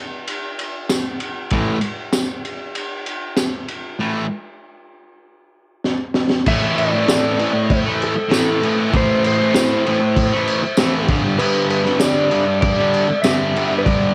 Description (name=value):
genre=garage rock duo or trio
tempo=97 BPM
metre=4/4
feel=straight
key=A minor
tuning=A4 = 439 Hz
part: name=crunchy breakbeat drum kit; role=drums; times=0.3-14.0 s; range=crash cymbal, kick drum, ride cymbal, snare drum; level=-22 LUFS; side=equal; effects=cassette tape
part: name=tambourine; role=percussion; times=0.9-13.4 s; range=none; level=-32 LUFS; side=equal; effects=none
part: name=fuzz guitar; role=riff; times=1.5-14.1 s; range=G2 to A3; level=-21 LUFS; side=equal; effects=distortion, cassette tape
part: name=clean lap steel guitar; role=melody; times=6.5-14.1 s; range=A4 to E5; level=-23 LUFS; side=equal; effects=cassette tape
room=light reverb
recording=home recording on cassette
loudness=-19 LUFS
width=mono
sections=0.0-6.5 A section; 6.5-14.1 B section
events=drum fill 5.8-6.5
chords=0.0 A5; 11.1 G5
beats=0.28 0.90 | 1.52 2.13 2.75 3.37 | 3.99 4.61 5.23 5.85 | 6.47 7.09 7.71 8.32 | 8.94 9.56 10.17 10.79 | 11.40 12.02 12.63 13.25 | 13.87